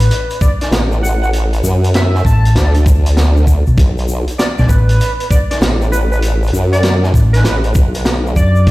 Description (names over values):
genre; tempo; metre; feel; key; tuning
glitch hop; 98 BPM; 4/4; swing 64% on 16ths; B minor; A4 = 440 Hz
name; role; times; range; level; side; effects
sync lead; melody; 0.0-8.7 s; B4 to A5; -21 LUFS; equal; chorus, digital delay
hollow-body short-scale fingered electric bass; bass; 0.0-8.7 s; A1 to F#2; -11 LUFS; equal; none
raw garage drum kit; drums; 0.0-8.7 s; hi-hat, snare drum; -20 LUFS; equal; none
egg shaker; percussion; 0.0-8.7 s; none; -32 LUFS; left 4 dB; none
electronic kick drum; drums; 0.4-8.7 s; none; -11 LUFS; equal; none
formant-sweep wobble bass; bass; 0.7-8.7 s; A1 to F#2; -13 LUFS; equal; chorus
room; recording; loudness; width
little or no reverb; played on a big sound system in a bare room, stone room reverb; -10 LUFS; side -18 dB against mid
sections
0.0-8.7 A section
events
none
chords
0.0 Bm7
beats
0.10 0.72 | 1.33 1.94 2.55 3.17 | 3.78 4.39 5.00 5.62 | 6.23 6.84 7.45 8.06 | 8.68